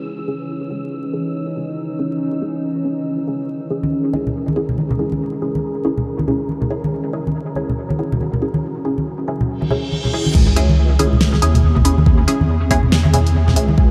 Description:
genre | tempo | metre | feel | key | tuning
deep dubstep | 140 BPM | 4/4 | swing 61% on 16ths, half-time | C# dorian | A4 = 440 Hz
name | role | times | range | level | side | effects
deep dark ambient pad | sustained chords | 0.0-10.4 s | C#4 to G#4 | -28 LUFS | equal | chorus, built-in reverb
downlifter, reverse cymbal and sub drop | sound effects | 0.0-0.1, 9.7-12.1 s | none | -30 LUFS | equal | none
wind-like tuned noise texture | texture | 0.0-10.4 s | E3 to E6 | -34 LUFS | equal | built-in reverb
filtered dub chord stab | stabs | 0.3-13.7 s | C#4 to G#4 | -26 LUFS | equal | phaser, analog chorus, dub echo
congas | percussion | 3.8-13.8 s | none | -23 LUFS | equal | none
deep soft wobble bass | bass | 10.3-13.9 s | C#2 to E2 | -17 LUFS | equal | chorus
deep house drum kit | drums | 10.3-13.7 s | crash cymbal, hi-hat, snare drum | -25 LUFS | equal | none
electronic kick drum | drums | 10.3-13.9 s | none | -17 LUFS | equal | none
room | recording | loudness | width
moderate huge ambient reverb, RT60 7.6 s | dreamy mix soaked in reverb, vinyl crackle | -18 LUFS | mono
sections
0.0-10.3 A section; 10.3-13.9 B section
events
filter sweep on synth stab 0.0-10.3; reverse cymbal 9.7-10.3; drop 10.3-13.9; impact 10.3-12.1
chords
0.0 C#m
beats
| 0.06 0.49 0.92 1.35 | 1.78 2.21 2.63 3.06 | 3.49 3.92 4.35 4.78 | 5.21 5.63 6.06 6.49 | 6.92 7.35 7.78 8.21 | 8.63 9.06 9.49 9.92 | 10.35 10.78 11.21 11.63 | 12.06 12.49 12.92 13.35 | 13.78

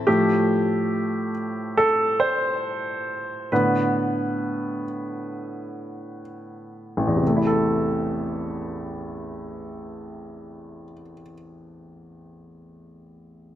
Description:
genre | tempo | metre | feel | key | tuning
pop | 62-71 BPM | 4/4 | straight | A minor | A4 = 440 Hz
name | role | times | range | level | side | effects
clear baby grand piano | accompaniment | 0.0-13.6 s | A1 to C5 | -22 LUFS | equal | none
fingerpicked plugged-in steel-string acoustic guitar | arpeggios | 0.0-0.7 s | C4 to A4 | -36 LUFS | left 4 dB | ping-pong delay
room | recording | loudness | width
moderate plate reverb, RT60 2.5 s | none | -21 LUFS | side -12 dB against mid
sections
0.0-7.2 A section; 7.2-11.1 B section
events
grand piano solo 0.0-7.2; slowing down 0.1-7.2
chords
0.1 Am7; 3.5 Asus24; 7.2 Am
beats
| 0.07 0.92 1.77 2.64 | 3.52 4.41 5.32 6.26 | 7.22 8.20 9.17 10.15

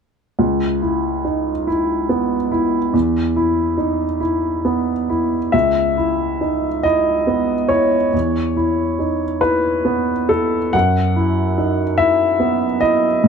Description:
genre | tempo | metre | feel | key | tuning
neoclassical minimalist piano | 47 BPM (dotted quarters) | 6/8 | rubato | C# minor | A4 = 440 Hz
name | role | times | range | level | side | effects
warm upright piano | solo | 0.4-13.3 s | C#2 to F#5 | -15 LUFS | equal | none
room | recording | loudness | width
light reverb | dark, warm production | -16 LUFS | side -6 dB against mid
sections
0.4-5.5 A section; 5.5-13.3 B section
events
none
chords
0.4 C#m7; 2.9 E5; 5.5 C#m7; 8.1 E5; 10.7 Bsus4/F#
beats
| 0.39 1.67 | 2.94 4.20 | 5.54 6.84 | 8.13 9.41 | 10.73 11.99 | 13.24

